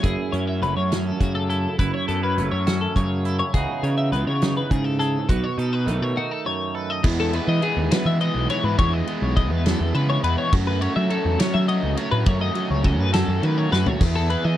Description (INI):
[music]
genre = math rock and midwest emo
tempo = 69 BPM (dotted quarters)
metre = 6/8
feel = straight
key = E major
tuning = A4 = 442 Hz
[part]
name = twangy electric guitar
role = accompaniment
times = 0.0-7.0 s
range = F#2 to A4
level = -28 LUFS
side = right 7 dB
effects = phaser
[part]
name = twelve-string electric guitar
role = arpeggios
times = 0.0-14.6 s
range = F#4 to E5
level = -26 LUFS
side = left 5 dB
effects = wide subtle chorus
[part]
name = fuzz picked electric bass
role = bass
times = 0.0-14.6 s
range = F#1 to F#3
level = -23 LUFS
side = equal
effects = overdrive
[part]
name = loose indie drum kit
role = drums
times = 0.0-14.4 s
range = crash cymbal, hi-hat, kick drum, ride cymbal, snare drum, splash cymbal, toms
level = -23 LUFS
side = equal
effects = none
[part]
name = overdriven semi-hollow guitar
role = riff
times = 7.0-14.6 s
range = E3 to G#4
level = -26 LUFS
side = right 3 dB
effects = none
[sound]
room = little or no reverb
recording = none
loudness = -19 LUFS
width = side -12 dB against mid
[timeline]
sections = 0.0-7.0 A section; 7.0-14.6 B section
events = break 6.2-7.0; drum fill 13.7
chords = 0.0 F#m7; 3.5 C#m11; 5.3 B7; 7.0 Emaj7; 10.5 F#m; 14.0 Emaj7